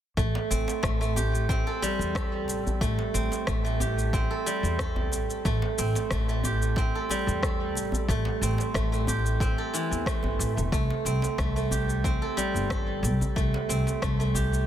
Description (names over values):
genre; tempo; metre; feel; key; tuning
organic downtempo; 91 BPM; 4/4; straight; A minor pentatonic; A4 = 438 Hz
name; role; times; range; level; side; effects
steel-string zither; arpeggios; 0.2-14.7 s; E3 to A4; -29 LUFS; right 2 dB; tape echo
upright bass; bass; 0.2-14.7 s; E1 to E2; -28 LUFS; left 1 dB; none
electronic cabasa and rim click; drums; 0.2-14.7 s; none; -34 LUFS; left 1 dB; soft clipping on snare
electronic kick drum; drums; 0.2-14.2 s; none; -29 LUFS; equal; none
djembe; percussion; 0.4-14.5 s; none; -35 LUFS; equal; none
room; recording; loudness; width
small room ambience; dense, heavily limited modern master; -24 LUFS; side -10 dB against mid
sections
0.2-14.7 A section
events
none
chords
0.2 Am7; 10.7 C5